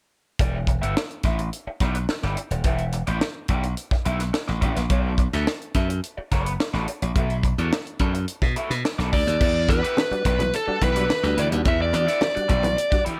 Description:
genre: funk.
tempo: 106 BPM.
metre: 4/4.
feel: straight.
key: E minor.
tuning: A4 = 440 Hz.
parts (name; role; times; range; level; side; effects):
raw garage guitar; accompaniment; 0.4-13.2 s; B3 to E5; -34 LUFS; equal; wah, overdrive.
glassy slap bass; bass; 0.4-13.1 s; D#1 to B2; -27 LUFS; equal; none.
tight funk drum kit; drums; 0.4-13.2 s; crash cymbal, hi-hat, kick drum, snare drum; -27 LUFS; equal; none.
nasal lead guitar with a parked wah; melody; 9.1-13.0 s; A4 to E5; -26 LUFS; equal; overdrive, tape echo.
percussive tonewheel organ; stabs; 9.4-13.2 s; E3 to F#4; -34 LUFS; equal; chorus vibrato, fast rotary speaker.
congas; percussion; 9.4-12.9 s; none; -33 LUFS; equal; none.
room: light reverb, small room reverb.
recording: none.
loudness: -23 LUFS.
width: mono.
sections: 0.4-9.4 A section; 9.4-13.2 B section.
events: none.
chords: 0.4 Em7; 4.9 Bm7; 9.4 Em7.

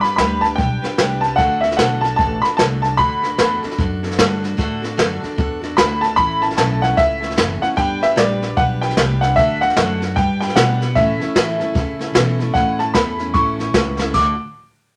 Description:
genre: rockabilly.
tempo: 151 BPM.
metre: 4/4.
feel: swing 62% on 8ths.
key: D major.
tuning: A4 = 442 Hz.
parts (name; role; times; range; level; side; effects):
bright upright piano; melody; 0.0-14.4 s; D5 to D6; -20 LUFS; equal; none.
picked steel-string acoustic guitar; accompaniment; 0.0-14.4 s; A2 to B4; -27 LUFS; equal; none.
upright bass; bass; 0.0-14.4 s; F#1 to D3; -25 LUFS; equal; none.
jazz brush drum kit; drums; 0.0-14.3 s; crash cymbal, hi-hat, kick drum, snare drum; -22 LUFS; equal; none.
room: moderate studio reverb, RT60 0.7 s.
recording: none.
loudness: -17 LUFS.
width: mono.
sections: 0.0-12.5 A section; 12.5-14.1 B section.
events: drum fill 13.9.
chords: 0.0 G; 1.4 D; 6.2 A; 7.8 G; 9.4 D; 10.2 G; 11.0 A; 14.1 D.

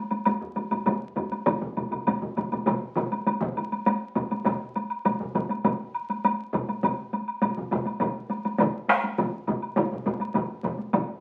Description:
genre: japanese traditional, taiko drum ensemble.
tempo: 101 BPM.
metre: 4/4.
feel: straight.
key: none.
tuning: none.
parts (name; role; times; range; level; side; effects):
solo taiko drums; percussion; 0.1-11.1 s; none; -32 LUFS; equal; none.
woodblock; percussion; 0.1-11.1 s; none; -32 LUFS; equal; none.
taiko ensemble; percussion; 0.3-11.1 s; none; -34 LUFS; equal; none.
taiko ensemble; percussion; 0.9-3.7, 8.6-11.1 s; none; -31 LUFS; equal; none.
taiko ensemble; percussion; 1.5-11.1 s; none; -34 LUFS; equal; none.
room: wet studio reverb, RT60 0.6 s.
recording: very old 78 rpm record, vinyl crackle.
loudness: -28 LUFS.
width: mono.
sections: 0.0-3.9 A section; 3.9-11.2 B section.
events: speeding up 0.0-11.2.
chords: none.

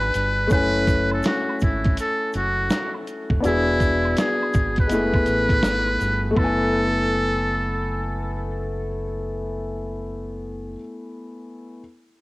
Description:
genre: lo-fi hip hop.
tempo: 82 BPM.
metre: 4/4.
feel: swing 66% on 16ths.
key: F# minor.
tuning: A4 = 440 Hz.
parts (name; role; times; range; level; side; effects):
trumpet with metal mute; melody; 0.0-8.5 s; E4 to B4; -24 LUFS; equal; cassette tape, tape echo.
warm upright piano; accompaniment; 0.0-11.8 s; G#3 to G#5; -25 LUFS; left 2 dB; cassette tape.
deep dub fingered electric bass; bass; 0.0-10.8 s; E1 to A1; -27 LUFS; equal; none.
woodblock and tube shaker; percussion; 0.0-6.7 s; none; -38 LUFS; right 4 dB; none.
dusty soul sampler-style drum kit; drums; 0.1-6.6 s; hi-hat, kick drum, snare drum; -23 LUFS; equal; cassette tape.
room: light reverb.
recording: home recording on cassette.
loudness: -19 LUFS.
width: side -21 dB against mid.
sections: 0.0-6.4 A section; 6.4-9.3 B section.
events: none.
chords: 0.0 E7 (rootless); 0.5 F#m7; 3.4 E7; 4.9 F#m11.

